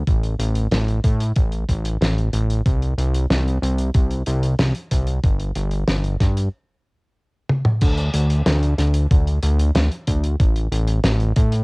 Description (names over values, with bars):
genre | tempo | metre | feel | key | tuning
synthwave | 93 BPM | 4/4 | straight | unclear | A4 = 440 Hz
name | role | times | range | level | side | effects
fat analog bass | bass | 0.0-11.6 s | G1 to A2 | -19 LUFS | equal | sidechain pumping
electronic kick drum | drums | 0.1-11.5 s | none | -18 LUFS | equal | cassette tape
warm soul drum kit | drums | 0.1-11.6 s | crash cymbal, hi-hat, snare drum, toms | -23 LUFS | equal | cassette tape
room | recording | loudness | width
little or no reverb | home recording on cassette | -17 LUFS | side -35 dB against mid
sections
0.0-7.8 A section; 7.8-11.6 B section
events
stop 6.5-7.8; drum fill 7.5-7.8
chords
none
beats
| 0.07 0.72 1.36 2.01 | 2.66 3.30 3.95 4.59 | 5.24 5.88 6.53 7.17 | 7.82 8.46 9.11 9.75 | 10.40 11.04